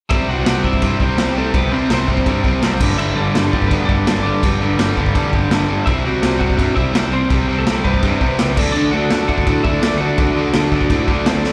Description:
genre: punk rock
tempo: 167 BPM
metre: 4/4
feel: straight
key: unclear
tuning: A4 = 439 Hz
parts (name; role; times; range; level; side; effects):
- lightly driven lead guitar; melody; 0.1-11.5 s; A3 to F#5; -25 LUFS; equal; slapback echo
- distorted electric guitar; riff; 0.1-11.5 s; G2 to D4; -24 LUFS; equal; overdrive, slapback echo
- overdriven electric guitar; riff; 0.1-11.5 s; G2 to D4; -24 LUFS; equal; slapback echo
- fuzz picked electric bass; bass; 0.1-11.5 s; G1 to A2; -24 LUFS; equal; overdrive
- raw garage drum kit; drums; 0.1-11.5 s; crash cymbal, kick drum, snare drum; -21 LUFS; equal; none
room: little or no reverb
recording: live gig heard through the venue's PA, club reverb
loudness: -16 LUFS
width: mono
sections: 0.1-11.5 A section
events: none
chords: 0.1 C; 2.8 G5; 5.9 C; 8.6 D

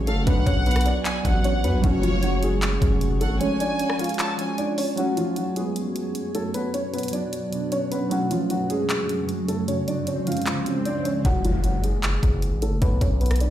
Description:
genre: hip hop, trap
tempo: 153 BPM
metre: 4/4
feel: half-time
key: F# harmonic minor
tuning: A4 = 440 Hz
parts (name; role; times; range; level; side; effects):
- dark grand piano; melody; 0.0-13.5 s; E#3 to E#5; -27 LUFS; left 1 dB; low-pass filter, tape echo
- muted felt-like synth keys; accompaniment; 0.0-11.3 s; E#3 to D4; -28 LUFS; right 3 dB; chorus, low-pass filter
- granular cloud pad; sustained chords; 0.0-11.2 s; C#2 to D6; -32 LUFS; equal; built-in reverb
- distorted 808-style bass; bass; 0.0-3.4, 11.2-13.5 s; E#1 to F#2; -23 LUFS; equal; distortion
- warm studio violin section; second line; 0.1-4.6 s; C#5 to A5; -30 LUFS; right 1 dB; tape echo
- trap drum kit; drums; 0.1-13.5 s; handclaps, hi-hat, kick drum, rim click; -26 LUFS; equal; none
- swell and impact; sound effects; 10.0-12.8 s; none; -32 LUFS; equal; none
room: digital ambience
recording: played on a big sound system in a bare room, large studio reverb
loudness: -21 LUFS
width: side -12 dB against mid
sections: 0.0-5.0 A section; 5.0-11.2 B section; 11.2-13.5 C section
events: break 3.4-5.0; swell 10.0-11.2; impact 11.2-12.8; filter sweep 11.2-13.5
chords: 0.3 Bm; 1.8 F#m; 3.4 C#; 5.0 F#m; 6.5 Bm; 8.1 F#m; 9.7 C#; 11.2 F#m; 12.8 Bm

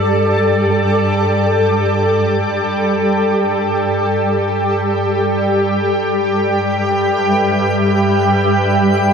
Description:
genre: ambient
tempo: free time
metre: none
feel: none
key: G major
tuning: A4 = 444 Hz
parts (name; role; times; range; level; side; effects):
- shimmering ambient pad; sustained chords; 0.0-9.1 s; G3 to E5; -14 LUFS; equal; chorus, built-in reverb
- warm studio cello section; bass; 0.0-9.1 s; G2; -20 LUFS; equal; none
- twinkling granular texture; texture; 6.6-9.1 s; G5; -20 LUFS; equal; built-in reverb
room: wet cathedral reverb, RT60 7.1 s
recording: in a vast, echoing space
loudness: -13 LUFS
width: side -6 dB against mid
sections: 0.0-9.1 A section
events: none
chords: 0.0 Gsus2; 5.9 Em/G

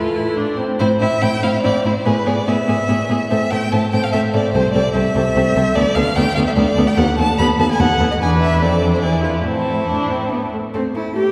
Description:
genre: quick classical-period movement for string quartet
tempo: 144 BPM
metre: 3/4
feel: straight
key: A minor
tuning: A4 = 437 Hz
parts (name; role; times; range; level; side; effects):
- warm violin; melody; 0.0-11.2 s; A4 to C6; -23 LUFS; equal; none
- warm violin; second line; 0.0-11.2 s; E4 to B4; -26 LUFS; equal; none
- rich viola; accompaniment; 0.0-11.2 s; A3 to F4; -24 LUFS; equal; none
- rich cello; bass; 0.0-11.3 s; C2 to G4; -21 LUFS; equal; none
room: wet church reverb, RT60 3.1 s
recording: heard from further back in the room, faint mains hum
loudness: -17 LUFS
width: mono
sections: 0.8-10.7 A section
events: none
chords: 0.0 Am; 2.1 E/A; 3.3 Am; 4.5 Am/C; 5.8 Dm6; 7.0 B7/D#; 8.2 E7(no3); 8.6 F; 9.0 E7; 9.5 Am

